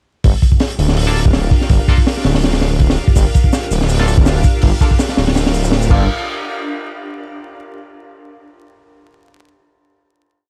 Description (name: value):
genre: drum and bass, jungle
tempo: 164 BPM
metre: 4/4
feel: swing 54% on 16ths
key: G minor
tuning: A4 = 440 Hz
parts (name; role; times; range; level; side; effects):
- granular cloud pad; sustained chords; 0.6-6.0 s; D4 to F5; -27 LUFS; equal; built-in reverb
- detuned saw bass; bass; 0.2-6.1 s; D1 to G1; -17 LUFS; equal; none
- crunchy breakbeat drum kit; drums; 0.2-6.0 s; crash cymbal, hi-hat, kick drum, snare drum; -16 LUFS; equal; none
- band-passed chord stab; stabs; 1.1-6.0 s; Bb3 to A4; -28 LUFS; equal; phaser, lush chorus, dub echo
- crunchy breakbeat drum kit; drums; 3.2-5.9 s; hi-hat, shaker, snare drum; -32 LUFS; equal; high-pass filter on hats, high-pass filter on snare, high-pass filter on perc, high-pass filter on room
room: little or no reverb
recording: vinyl crackle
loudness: -14 LUFS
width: mono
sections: 0.2-6.1 drop; 6.1-7.6 final hit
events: drop 0.2-6.1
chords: 0.2 Gm7; 6.1 N.C.